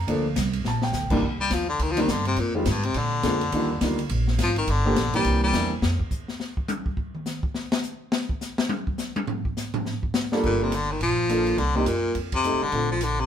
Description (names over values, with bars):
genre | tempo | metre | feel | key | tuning
jazz, small-group swing and bop | 209 BPM | 4/4 | swing 60% on 8ths | C minor | A4 = 441 Hz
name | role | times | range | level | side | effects
warm baby grand piano | accompaniment | 0.0-5.7, 10.3-12.9 s | C2 to A5 | -26 LUFS | equal | none
upright bass | bass | 0.0-6.0, 10.4-13.3 s | G1 to Bb2 | -26 LUFS | right 1 dB | none
open jazz drum kit | drums | 0.1-13.1 s | crash cymbal, hi-hat, kick drum, ride cymbal, rim click, snare drum, toms | -29 LUFS | left 2 dB | none
bright baritone saxophone | melody | 1.4-5.7, 10.5-13.3 s | Eb2 to G3 | -25 LUFS | left 2 dB | none
room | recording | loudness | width
moderate studio reverb, RT60 0.9 s | band playing live in one room | -22 LUFS | side -9 dB against mid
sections
0.0-1.2 A section; 1.2-10.4 A section; 10.4-13.3 B section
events
drum fill 0.6; baritone saxophone solo 1.2-10.4; drum solo 5.8-10.4; band accent 12.3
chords
0.0 Gm7; 1.2 Cmadd9; 2.4 Fm7; 2.9 Bb7; 3.5 Ebmaj7; 4.7 Gm7; 5.2 C7; 5.8 N.C.; 9.8 Gm7; 11.6 Cm7; 12.2 F7; 12.7 Bbmaj7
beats
| 0.07 0.35 0.64 0.93 | 1.22 1.50 1.79 2.08 | 2.37 2.66 2.94 3.23 | 3.52 3.81 4.09 4.38 | 4.67 4.96 5.24 5.53 | 5.82 6.11 6.39 6.68 | 6.97 7.26 7.54 7.83 | 8.12 8.41 8.70 8.98 | 9.27 9.56 9.85 10.13 | 10.42 10.71 11.00 11.29 | 11.58 11.86 12.15 12.44 | 12.73 13.02